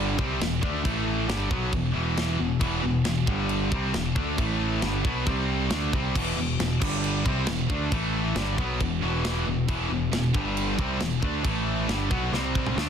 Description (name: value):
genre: heavy metal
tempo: 136 BPM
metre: 4/4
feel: straight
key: E minor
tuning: A4 = 440 Hz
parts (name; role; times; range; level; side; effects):
- distorted electric guitar; riff; 0.0-12.9 s; E2 to D4; -31 LUFS; right 11 dB; distortion
- heavy high-gain guitar; riff; 0.0-12.9 s; E2 to D4; -30 LUFS; left 11 dB; distortion
- heavy high-gain guitar; riff; 0.0-12.9 s; E2 to D4; -32 LUFS; right 1 dB; distortion
- growling picked electric bass; bass; 0.0-12.9 s; E1 to D2; -30 LUFS; equal; overdrive
- tight metal drum kit; drums; 0.2-12.9 s; china cymbal, crash cymbal, kick drum, snare drum, toms; -30 LUFS; equal; soft clipping on kick
room: little or no reverb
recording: dense, heavily limited modern master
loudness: -24 LUFS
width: side -8 dB against mid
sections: 0.0-12.9 A section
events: drum fill 12.3-12.9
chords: 0.2 Em; 0.8 A5; 1.3 Em; 3.3 G5; 3.7 Em; 4.4 A5; 4.8 Gmaj7; 5.3 C5; 5.7 Em; 6.8 G5; 7.3 Em; 7.9 A5; 8.4 Em; 10.3 G5; 10.8 Em; 11.4 A5; 11.9 Gmaj7; 12.3 C5